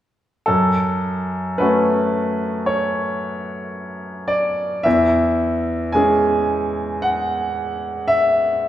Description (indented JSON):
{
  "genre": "classical, romantic nocturne for solo piano",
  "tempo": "55 BPM",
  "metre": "4/4",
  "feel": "rubato",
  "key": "F# minor",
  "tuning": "A4 = 441 Hz",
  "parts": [
    { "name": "bright grand piano", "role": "solo", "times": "0.5-8.7 s", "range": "E2 to G#5", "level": "-17 LUFS", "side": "equal", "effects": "none" }
  ],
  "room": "wet recital hall reverb, RT60 1.6 s",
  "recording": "heard from further back in the room",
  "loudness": "-17 LUFS",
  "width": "side -12 dB against mid",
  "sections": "0.5-8.7 A section",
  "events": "none",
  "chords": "0.5 F#m; 4.9 C#m/E"
}